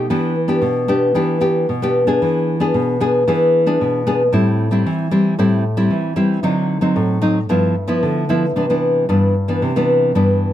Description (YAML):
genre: samba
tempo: 114 BPM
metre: 4/4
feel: straight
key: unclear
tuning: A4 = 438 Hz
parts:
  - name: nylon-string guitar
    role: solo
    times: 0.0-10.5 s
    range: G2 to Ab4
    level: -14 LUFS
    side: equal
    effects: none
room: light reverb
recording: close, detailed microphones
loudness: -14 LUFS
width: side -12 dB against mid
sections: 0.0-8.6 A section; 8.6-10.5 B section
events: none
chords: 0.1 Em7; 2.2 E7; 4.3 Am7; 6.4 D7b9; 7.5 G6; 8.6 Cmaj9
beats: | 0.09 0.62 1.15 1.68 | 2.21 2.73 3.26 3.79 | 4.32 4.85 5.38 5.90 | 6.43 6.96 7.49 8.02 | 8.55 9.08 9.61 10.14